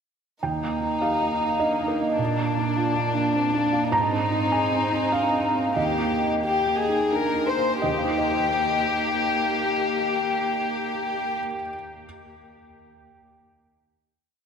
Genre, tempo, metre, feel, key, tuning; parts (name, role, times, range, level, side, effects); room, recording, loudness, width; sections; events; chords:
neoclassical piano and strings; 84-104 BPM; 3/4; rubato; Eb major; A4 = 440 Hz
warm chamber violin section; melody; 0.4-11.4 s; D4 to C5; -24 LUFS; left 3 dB
warm cello; second line; 0.4-11.4 s; Bb3 to C4; -33 LUFS; right 4 dB
felt-muted upright piano; accompaniment; 0.4-12.1 s; Eb2 to Bb5; -26 LUFS; right 3 dB
wet cathedral reverb, RT60 4.1 s; recorded in a church or concert hall; -21 LUFS; side -7 dB against mid
0.4-7.8 theme; 7.8-12.0 final chord
slowing down 3.1-7.8
0.4 Eb; 2.2 Bb; 3.9 Ab; 5.8 Eb